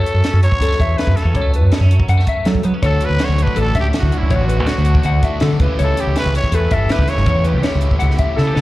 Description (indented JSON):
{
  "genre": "math rock and midwest emo",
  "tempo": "162 BPM",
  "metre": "4/4",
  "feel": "straight",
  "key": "D major",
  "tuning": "A4 = 441 Hz",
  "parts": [
    { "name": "growling trumpet", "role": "melody", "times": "0.0-8.6 s", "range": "E4 to C#5", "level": "-23 LUFS", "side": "equal", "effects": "plate reverb, slapback echo" },
    { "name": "twangy electric guitar", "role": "accompaniment", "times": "0.0-8.6 s", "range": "D2 to G4", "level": "-28 LUFS", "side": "right 6 dB", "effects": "analog chorus, plate reverb, slapback echo" },
    { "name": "mellow electric guitar", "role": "arpeggios", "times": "0.0-8.6 s", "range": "A4 to F#5", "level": "-23 LUFS", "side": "left 4 dB", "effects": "plate reverb" },
    { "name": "growling fingered electric bass", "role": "bass", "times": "0.1-8.6 s", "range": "G1 to F#3", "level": "-15 LUFS", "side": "equal", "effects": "overdrive" },
    { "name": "compact cocktail drum kit", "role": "drums", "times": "0.1-8.6 s", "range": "hi-hat, kick drum, snare drum", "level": "-19 LUFS", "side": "equal", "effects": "none" },
    { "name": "crunchy overdriven guitar", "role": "riff", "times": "2.8-8.6 s", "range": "C#3 to G4", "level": "-24 LUFS", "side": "equal", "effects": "slapback echo" }
  ],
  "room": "little or no reverb",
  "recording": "live gig heard through the venue's PA, club reverb",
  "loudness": "-13 LUFS",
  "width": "side -17 dB against mid",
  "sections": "0.0-8.6 A section",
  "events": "drum fill 8.4",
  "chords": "0.0 F#m7; 2.8 Dmaj9; 5.6 A9"
}